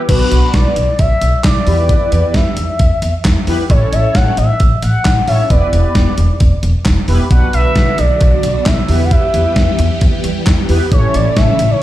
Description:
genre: synth-pop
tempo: 133 BPM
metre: 4/4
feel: straight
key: unclear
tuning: A4 = 441 Hz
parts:
  - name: mellow synth brass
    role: accompaniment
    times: 0.0-11.6 s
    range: B3 to C#5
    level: -20 LUFS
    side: equal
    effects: chorus, phaser
  - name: phased string machine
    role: sustained chords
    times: 0.0-0.1, 7.3-11.8 s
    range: C#3 to G4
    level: -21 LUFS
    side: equal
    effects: ensemble chorus, phaser
  - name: expressive portamento lead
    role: melody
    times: 0.1-11.8 s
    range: B4 to F#5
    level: -18 LUFS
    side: left 1 dB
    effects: chorus, ping-pong delay
  - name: upright bass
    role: bass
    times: 0.1-11.7 s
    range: E1 to E2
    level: -14 LUFS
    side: equal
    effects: none
  - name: clean 12-bit digital drum machine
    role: drums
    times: 0.1-11.7 s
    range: crash cymbal, handclaps, hi-hat, kick drum, snare drum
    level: -14 LUFS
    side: equal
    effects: none
room: little or no reverb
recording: played on a big sound system in a bare room, stone room reverb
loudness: -10 LUFS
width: side -14 dB against mid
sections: 0.1-11.8 A section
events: none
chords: 0.1 Bm; 1.7 Em; 3.7 A; 5.5 Em; 7.3 Bm; 8.9 Em; 10.9 A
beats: | 0.09 0.54 0.99 1.44 | 1.89 2.35 2.80 3.25 | 3.70 4.15 4.60 5.05 | 5.50 5.95 6.41 6.86 | 7.31 7.76 8.21 8.66 | 9.11 9.56 10.01 10.46 | 10.92 11.37 11.82

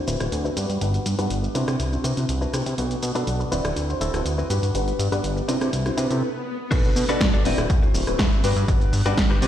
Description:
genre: filtered disco house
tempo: 122 BPM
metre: 4/4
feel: straight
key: G major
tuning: A4 = 441 Hz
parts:
  - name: dark grand piano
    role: accompaniment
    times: 0.0-9.5 s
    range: G3 to F#5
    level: -27 LUFS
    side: equal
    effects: phaser, sidechain pumping, low-pass filter
  - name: direct-recorded clean electric guitar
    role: riff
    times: 0.1-9.5 s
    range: C4 to D5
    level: -31 LUFS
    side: left 3 dB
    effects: sidechain pumping, low-pass filter
  - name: fat analog bass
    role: bass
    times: 0.1-9.5 s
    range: D1 to C3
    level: -24 LUFS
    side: equal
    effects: sidechain pumping, low-pass filter
  - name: punchy analog drum machine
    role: drums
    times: 0.1-9.5 s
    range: crash cymbal, hi-hat, rim click, shaker, snare drum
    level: -29 LUFS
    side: right 1 dB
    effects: sidechain pumping on perc, sidechain pumping on hats, sidechain pumping on cymbals
  - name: swell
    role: sound effects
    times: 5.9-6.7 s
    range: none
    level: -33 LUFS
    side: left 1 dB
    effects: none
  - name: electronic kick drum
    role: drums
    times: 6.7-9.3 s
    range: none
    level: -21 LUFS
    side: equal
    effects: none
room: light reverb, digital ambience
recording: played on a big sound system in a bare room, stone room reverb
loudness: -20 LUFS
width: side -11 dB against mid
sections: 0.0-6.7 A section; 6.7-9.5 B section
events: filter sweep 0.0-6.7; swell 5.9-6.7; stop 6.2-6.7; drop 6.7-9.5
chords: 0.0 D13; 0.6 Gmaj7; 1.6 Cmaj9#11; 2.8 Bm7; 3.5 D13; 4.5 Gmaj7; 5.5 Cmaj9#11; 6.7 Bm7; 7.5 D13; 8.4 Gmaj7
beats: 0.32 | 0.81 1.31 1.80 2.29 | 2.78 3.27 3.77 4.26 | 4.75 5.24 5.73 6.22 | 6.72 7.21 7.70 8.19 | 8.68 9.18

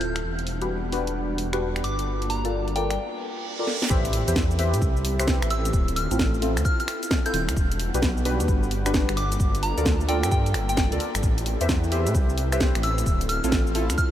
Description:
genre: UK garage, two-step garage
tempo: 131 BPM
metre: 4/4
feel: swing 65% on 16ths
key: unclear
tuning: A4 = 442 Hz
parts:
  - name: soft synth bell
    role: melody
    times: 0.0-14.1 s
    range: G5 to G6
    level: -32 LUFS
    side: equal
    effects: chorus, tape echo
  - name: airy breathy pad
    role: sustained chords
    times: 0.0-14.1 s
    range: G3 to F#5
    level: -34 LUFS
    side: left 1 dB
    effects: chorus, sidechain pumping
  - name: dark detuned saw bass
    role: bass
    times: 0.0-14.0 s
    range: D1 to A2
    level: -26 LUFS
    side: equal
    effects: none
  - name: house drum kit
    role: drums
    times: 0.0-14.1 s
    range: cabasa, finger snaps, hi-hat, snare drum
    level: -29 LUFS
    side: equal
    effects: none
  - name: deep mellow chord stab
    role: stabs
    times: 0.6-13.8 s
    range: C4 to E5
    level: -29 LUFS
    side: equal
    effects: chorus, tape echo
  - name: reverse cymbal and impact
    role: sound effects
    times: 3.2-5.7 s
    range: none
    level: -34 LUFS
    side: right 2 dB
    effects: none
  - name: electronic kick drum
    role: drums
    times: 3.9-14.1 s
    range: none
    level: -24 LUFS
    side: equal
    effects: none
room: moderate huge ambient reverb, RT60 8.3 s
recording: dreamy mix soaked in reverb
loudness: -21 LUFS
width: side -11 dB against mid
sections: 0.0-3.9 A section; 3.9-14.1 B section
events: filter sweep on drum 0.0-3.9; reverse cymbal 3.2-3.9; drum fill 3.7; drop 3.9-14.1; impact 3.9-5.7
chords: 0.2 Em7; 1.8 Gm7; 3.9 Am7; 5.7 Dm7; 7.6 Em7; 9.2 Gm7; 11.2 Am7; 13.1 Dm7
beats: | 0.24 0.70 1.15 1.61 | 2.07 2.53 2.99 3.44 | 3.90 4.36 4.82 5.28 | 5.73 6.19 6.65 7.11 | 7.57 8.02 8.48 8.94 | 9.40 9.86 10.31 10.77 | 11.23 11.69 12.15 12.60 | 13.06 13.52 13.98

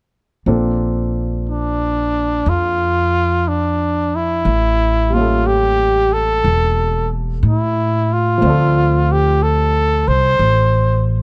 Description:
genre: jazz ballad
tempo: 60 BPM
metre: 4/4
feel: swing 68% on 8ths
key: Bb major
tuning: A4 = 439 Hz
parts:
  - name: warm grand piano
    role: accompaniment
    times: 0.5-11.2 s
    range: F3 to E5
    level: -25 LUFS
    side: equal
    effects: none
  - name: upright bass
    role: bass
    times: 0.5-11.2 s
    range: E1 to A2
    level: -20 LUFS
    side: equal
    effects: none
  - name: breathy trumpet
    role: melody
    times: 1.5-11.1 s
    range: D4 to C5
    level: -19 LUFS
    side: equal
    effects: none
room: little or no reverb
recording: dark, warm production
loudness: -16 LUFS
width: mono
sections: 0.5-11.2 A section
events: none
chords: 0.5 Bbmaj9; 4.5 A7b9; 8.4 Dm7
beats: | 0.46 1.47 2.47 3.46 | 4.46 5.45 6.45 7.43 | 8.42 9.40 10.40

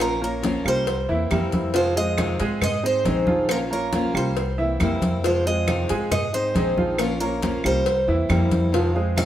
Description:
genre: latin, Cuban son and guajira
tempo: 137 BPM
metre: 4/4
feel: straight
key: F minor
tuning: A4 = 440 Hz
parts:
  - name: Cuban tres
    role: melody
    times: 0.0-9.3 s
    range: Bb4 to F5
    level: -25 LUFS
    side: right 1 dB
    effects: none
  - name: fingerpicked old ladder-braced acoustic guitar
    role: accompaniment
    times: 0.0-9.3 s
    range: C3 to Ab4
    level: -27 LUFS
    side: left 2 dB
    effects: none
  - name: warm baby grand piano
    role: arpeggios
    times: 0.0-9.3 s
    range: E3 to Ab5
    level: -27 LUFS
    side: right 2 dB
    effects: none
  - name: upright bass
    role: bass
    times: 0.0-9.3 s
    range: Bb1 to Ab2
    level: -26 LUFS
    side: equal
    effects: none
  - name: claves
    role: percussion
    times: 0.0-9.3 s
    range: none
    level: -34 LUFS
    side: right 4 dB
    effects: none
  - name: congas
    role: percussion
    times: 0.0-9.3 s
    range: none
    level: -27 LUFS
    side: equal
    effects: none
  - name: cowbell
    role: percussion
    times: 0.0-9.3 s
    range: none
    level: -32 LUFS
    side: left 2 dB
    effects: none
room: moderate stone room reverb, RT60 1.4 s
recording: band playing live in one room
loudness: -20 LUFS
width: side -12 dB against mid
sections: 0.0-9.3 A section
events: none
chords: 0.0 Bbm; 0.9 C7; 1.7 Fm7; 2.6 Ab; 3.5 Bbm; 4.4 C7; 5.2 Fm7; 6.1 Ab; 7.0 Bbm; 7.9 C7; 8.7 Fm7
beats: | 0.00 0.43 0.87 1.31 | 1.75 2.18 2.62 3.06 | 3.49 3.93 4.37 4.80 | 5.24 5.68 6.12 6.55 | 6.99 7.43 7.86 8.30 | 8.74 9.18

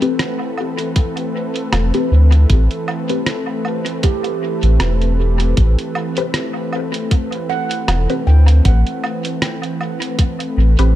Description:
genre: ambient dub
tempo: 78 BPM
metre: 4/4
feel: swing 55% on 16ths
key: A minor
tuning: A4 = 442 Hz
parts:
  - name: warm analog pad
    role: sustained chords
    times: 0.0-11.0 s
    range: E3 to B4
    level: -22 LUFS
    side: equal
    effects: chorus
  - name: handpan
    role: arpeggios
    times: 0.0-11.0 s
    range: G4 to G5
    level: -27 LUFS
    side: right 10 dB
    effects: analog delay
  - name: filtered dub chord stab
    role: stabs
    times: 0.0-10.9 s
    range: C4 to B4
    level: -24 LUFS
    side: left 3 dB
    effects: phaser, dub echo
  - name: lo-fi sampler-style drum kit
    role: drums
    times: 0.0-10.9 s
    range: hi-hat, rim click, woodblock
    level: -24 LUFS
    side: right 1 dB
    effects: dub echo
  - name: electronic kick drum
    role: drums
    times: 1.0-10.4 s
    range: none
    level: -14 LUFS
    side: equal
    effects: none
  - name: warm sub bass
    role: bass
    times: 1.7-11.0 s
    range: E1 to D2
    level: -11 LUFS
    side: equal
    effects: none
room: digital ambience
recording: echo-heavy mix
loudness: -14 LUFS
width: side -13 dB against mid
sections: 0.0-11.0 A section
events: none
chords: 0.0 Am9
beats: 0.19 0.96 1.73 | 2.50 3.27 4.04 4.81 | 5.58 6.34 7.11 7.88 | 8.65 9.42 10.19

